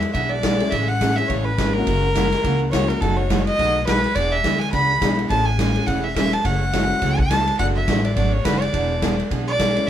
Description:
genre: country, western swing.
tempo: 210 BPM.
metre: 4/4.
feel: swing 59% on 8ths.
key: unclear.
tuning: A4 = 437 Hz.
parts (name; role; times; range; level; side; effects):
upright bass; bass; 0.0-9.8 s; E1 to D2; -23 LUFS; equal; none.
swinging big-band drum kit; drums; 0.0-9.8 s; hi-hat, kick drum, ride cymbal, snare drum; -23 LUFS; left 1 dB; none.
clear fiddle; melody; 0.1-9.9 s; A4 to B5; -22 LUFS; equal; none.
picked steel-string acoustic guitar; accompaniment; 0.1-9.7 s; B2 to G#4; -27 LUFS; right 5 dB; none.
warm upright piano; accompaniment; 0.6-9.9 s; A3 to A4; -28 LUFS; left 3 dB; none.
room: moderate studio reverb, RT60 0.5 s.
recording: band playing live in one room.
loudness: -17 LUFS.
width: side -10 dB against mid.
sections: 0.0-9.9 A section.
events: none.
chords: 0.0 E7; 0.7 Amaj7; 1.9 F#7; 3.0 B7/F#; 4.2 E7; 5.3 Amaj7; 6.4 F#m7; 7.6 Bm7/F#; 8.7 E7.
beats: 0.14 0.43 | 0.72 1.01 1.29 1.58 | 1.87 2.15 2.44 2.73 | 3.01 3.30 3.59 3.87 | 4.16 4.45 4.73 5.02 | 5.30 5.59 5.88 6.16 | 6.45 6.73 7.02 7.30 | 7.59 7.88 8.16 8.45 | 8.73 9.02 9.31 9.59 | 9.88.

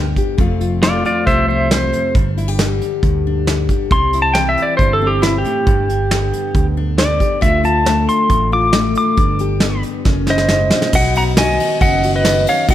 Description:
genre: honky-tonk and classic country.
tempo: 137 BPM.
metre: 4/4.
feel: straight.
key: unclear.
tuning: A4 = 445 Hz.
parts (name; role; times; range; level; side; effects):
picked steel-string acoustic guitar; accompaniment; 0.0-12.7 s; E2 to G4; -20 LUFS; left 6 dB; none.
fingered electric bass; bass; 0.0-12.7 s; F1 to D2; -20 LUFS; right 1 dB; none.
soft brush drum kit; drums; 0.2-12.7 s; crash cymbal, hi-hat, kick drum, ride cymbal, snare drum; -18 LUFS; right 1 dB; none.
pedal steel guitar; melody; 0.8-12.7 s; E4 to D6; -16 LUFS; right 1 dB; none.
room: moderate recital hall reverb, RT60 1.6 s.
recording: none.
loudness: -13 LUFS.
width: side -12 dB against mid.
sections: 0.0-10.9 A section; 10.9-12.7 B section.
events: pedal steel guitar solo 0.0-10.9; drum fill 10.1-10.9.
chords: 0.4 F; 2.2 G5; 3.9 C; 5.7 G; 7.4 Dm; 9.2 G; 10.1 F#7; 10.9 Cb.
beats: | 0.40 0.84 1.28 1.72 | 2.15 2.60 3.03 3.47 | 3.91 4.35 4.79 5.23 | 5.67 6.11 6.55 6.99 | 7.43 7.87 8.31 8.75 | 9.19 9.62 10.06 10.50 | 10.94 11.38 11.82 12.26 | 12.69.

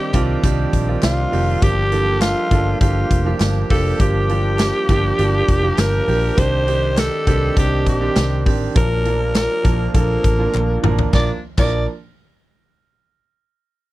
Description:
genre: 1980s-style pop.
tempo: 101 BPM.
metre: 4/4.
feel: straight.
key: Bb major.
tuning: A4 = 438 Hz.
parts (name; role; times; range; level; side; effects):
raspy alto saxophone; melody; 0.0-11.9 s; F4 to D5; -21 LUFS; left 1 dB; slapback echo.
bright grand piano; accompaniment; 0.0-11.9 s; Eb3 to Bb4; -23 LUFS; right 5 dB; none.
clear woodwind section; sustained chords; 0.0-11.4 s; Eb3 to G4; -29 LUFS; left 2 dB; none.
vintage muted fingered electric bass; bass; 0.1-11.9 s; F1 to C2; -20 LUFS; equal; none.
big rock drum kit; drums; 0.1-11.7 s; crash cymbal, hi-hat, kick drum, snare drum, tambourine, toms; -19 LUFS; equal; none.
group handclap; percussion; 0.1-11.9 s; none; -33 LUFS; left 7 dB; none.
room: light reverb.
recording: dry, close 1970s-style studio recording.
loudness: -15 LUFS.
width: side -17 dB against mid.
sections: 0.0-11.1 A section; 11.1-13.5 B section.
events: drum fill 10.5-11.1.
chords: 0.0 Cmadd9; 1.6 Gm7; 6.4 Cmadd9; 8.8 Bb.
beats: 0.44 1.03 | 1.63 2.22 2.81 3.41 | 4.00 4.60 5.19 5.79 | 6.38 6.97 7.57 8.16 | 8.76 9.35 9.94 10.54 | 11.13 11.73.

